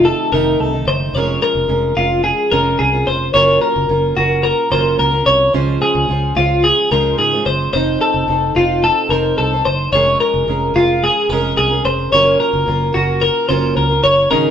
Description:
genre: indie pop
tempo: 109 BPM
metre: 4/4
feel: straight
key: Bb minor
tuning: A4 = 440 Hz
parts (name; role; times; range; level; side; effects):
- fingerpicked plugged-in steel-string acoustic guitar; accompaniment; 0.0-14.5 s; F2 to C5; -20 LUFS; right 5 dB; none
- twelve-string electric guitar; arpeggios; 0.0-14.5 s; F4 to Db5; -14 LUFS; left 2 dB; none
- fingered electric bass; bass; 0.0-14.5 s; F1 to Ab2; -20 LUFS; right 1 dB; none
room: wet stone room reverb, RT60 0.9 s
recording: band playing live in one room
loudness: -12 LUFS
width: side -8 dB against mid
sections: 0.0-14.5 A section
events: none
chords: 0.0 F7; 1.1 Bbm7/F; 3.3 Gbmaj7; 5.5 Dbmaj7; 7.7 F7; 9.9 Bbm7/F; 12.1 Gbmaj7

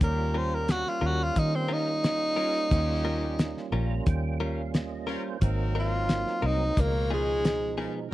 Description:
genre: straight-eighth soul blues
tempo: 89 BPM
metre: 4/4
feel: straight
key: unclear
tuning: A4 = 436 Hz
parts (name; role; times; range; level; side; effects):
- bright tenor saxophone; melody; 0.0-7.8 s; Ab3 to C5; -28 LUFS; equal; slapback echo
- percussive tonewheel organ; accompaniment; 0.0-8.1 s; Cb3 to Bb5; -35 LUFS; right 7 dB; slow rotary speaker, chorus vibrato
- bright horn section; sustained chords; 0.0-8.1 s; Gb3 to Db5; -40 LUFS; left 2 dB; none
- vintage muted fingered electric bass; bass; 0.0-7.9 s; Ab1 to Eb3; -29 LUFS; equal; none
- cloth-damped thuddy drum kit; drums; 0.0-7.6 s; hi-hat, kick drum, snare drum; -26 LUFS; equal; none
- direct-recorded clean electric guitar; stabs; 0.3-8.0 s; F3 to Bb4; -35 LUFS; left 4 dB; none
room: small room ambience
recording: dry, close 1970s-style studio recording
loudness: -25 LUFS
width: side -16 dB against mid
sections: 0.0-8.1 A section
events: tenor saxophone solo 0.0-8.1; tonewheel organ fill 3.4-5.4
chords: 0.0 Eb9; 5.4 Ab9; 6.8 Db9

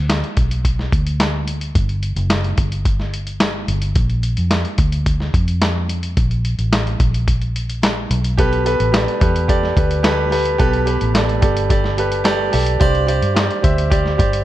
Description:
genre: piano-driven pop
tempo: 108 BPM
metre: 4/4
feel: straight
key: G major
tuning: A4 = 440 Hz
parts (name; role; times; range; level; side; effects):
- vintage muted fingered electric bass; bass; 0.0-14.4 s; F#1 to G2; -19 LUFS; equal; none
- lo-fi sampler-style drum kit; drums; 0.1-14.4 s; handclaps, hi-hat, kick drum, snare drum; -18 LUFS; equal; none
- clear baby grand piano; accompaniment; 8.4-14.4 s; G2 to E5; -18 LUFS; right 1 dB; none
room: light reverb, digital ambience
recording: dark, warm production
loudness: -15 LUFS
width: side -14 dB against mid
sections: 0.0-14.4 A section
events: none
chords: 0.0 G; 4.0 Bb; 8.1 Gadd9; 12.8 Csus2

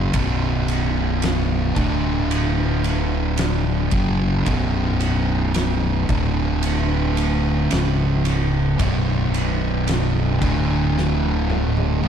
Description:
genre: stoner and doom metal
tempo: 56 BPM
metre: 4/4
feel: straight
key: unclear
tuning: A4 = 441 Hz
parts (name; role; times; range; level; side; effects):
- fuzz guitar; riff; 0.0-12.1 s; B1 to F#3; -21 LUFS; equal; distortion
- growling fingered electric bass; bass; 0.0-12.1 s; B0 to F#1; -22 LUFS; equal; overdrive
- oversized low-tuned drum kit; drums; 0.1-12.1 s; kick drum, ride cymbal, snare drum, toms; -25 LUFS; right 1 dB; none
room: little or no reverb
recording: dark, warm production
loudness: -18 LUFS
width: side -8 dB against mid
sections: 0.0-12.1 A section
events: drum fill 11.0-12.1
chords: 0.0 B5; 1.8 D5; 3.9 B5; 6.1 D5; 7.7 C#5; 8.8 B5; 10.4 D5

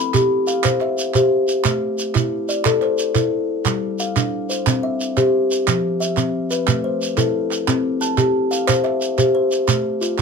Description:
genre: southern african traditional, mbira-style interlocking cycle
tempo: 120 BPM (dotted quarters)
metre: 12/8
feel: straight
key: C major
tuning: A4 = 440 Hz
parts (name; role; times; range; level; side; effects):
- kalimba; arpeggios; 0.0-10.2 s; F3 to B5; -18 LUFS; left 2 dB; none
- group handclap; percussion; 0.1-10.2 s; none; -24 LUFS; right 9 dB; none
- shekere; percussion; 0.1-10.2 s; none; -21 LUFS; right 7 dB; none
room: light reverb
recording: minimal, uncompressed stereo recording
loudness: -17 LUFS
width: side -5 dB against mid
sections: 0.0-7.7 A section; 7.7-10.2 B section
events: none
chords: 0.0 C; 1.6 Am; 3.7 G5; 4.7 C; 5.7 F5; 6.7 Am; 7.7 C; 9.7 Am

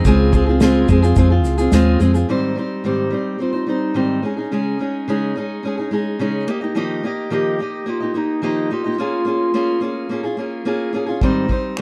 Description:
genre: acoustic pop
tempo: 108 BPM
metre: 4/4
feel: straight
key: Ab major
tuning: A4 = 440 Hz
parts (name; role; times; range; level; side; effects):
- fingerpicked steel-string acoustic guitar; accompaniment; 0.0-11.8 s; Ab2 to Eb5; -21 LUFS; equal; none
- vintage muted fingered electric bass; bass; 0.0-2.2 s; Db2 to F2; -18 LUFS; equal; none
- unplugged drum kit; drums; 0.0-2.3, 11.2-11.8 s; finger snaps, kick drum, shaker, snare drum; -22 LUFS; equal; none
- dark clarinet; melody; 2.9-10.3 s; C4 to G4; -25 LUFS; equal; none
room: light reverb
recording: dark, warm production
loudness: -19 LUFS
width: mono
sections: 0.0-2.3 A section; 2.3-11.8 B section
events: none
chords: 0.1 Dbmaj7; 2.3 Abmaj7; 4.2 Dbsus2; 6.5 Ebadd9; 9.0 Bbm7; 11.2 Abmaj7

